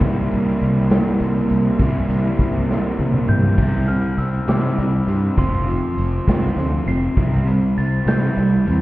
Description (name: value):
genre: indie rock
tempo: 67 BPM (dotted quarters)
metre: 6/8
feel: straight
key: unclear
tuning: A4 = 440 Hz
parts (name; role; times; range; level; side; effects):
- fuzz guitar; riff; 0.0-8.8 s; C3 to F4; -25 LUFS; left 4 dB; distortion
- overdriven electric guitar; riff; 0.0-8.8 s; F3 to F4; -22 LUFS; right 3 dB; analog chorus
- fuzz fingered electric bass; bass; 0.0-8.8 s; F1 to C3; -20 LUFS; equal; overdrive
- raw garage drum kit; drums; 0.0-8.8 s; crash cymbal, hi-hat, kick drum, snare drum, toms; -22 LUFS; equal; none
- glockenspiel with rubber mallets; melody; 3.3-8.8 s; C6 to C7; -30 LUFS; right 1 dB; none
room: light reverb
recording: heard muffled through a wall, stone room reverb, EQ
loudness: -16 LUFS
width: side -17 dB against mid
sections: 0.0-3.6 A section; 3.6-8.8 B section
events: drum fill 2.7-3.6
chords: 0.0 C7; 3.6 C; 5.4 F; 7.2 C